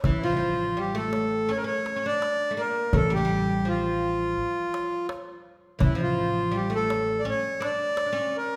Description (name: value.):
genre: Arabic maqam ensemble.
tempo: 83 BPM.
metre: 4/4.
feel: straight.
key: A maqam hijaz.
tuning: A4 = 438 Hz.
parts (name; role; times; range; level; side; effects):
accordion; melody; 0.0-8.6 s; E4 to D5; -29 LUFS; equal; none.
oud; second line; 0.0-8.6 s; E3 to D4; -34 LUFS; equal; none.
upright bass; bass; 0.0-7.2 s; A1; -32 LUFS; equal; none.
darbuka; percussion; 0.0-8.1 s; none; -33 LUFS; equal; none.
room: wet recital hall reverb, RT60 1.6 s.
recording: none.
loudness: -26 LUFS.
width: mono.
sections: 0.1-8.6 A section.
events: none.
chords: none.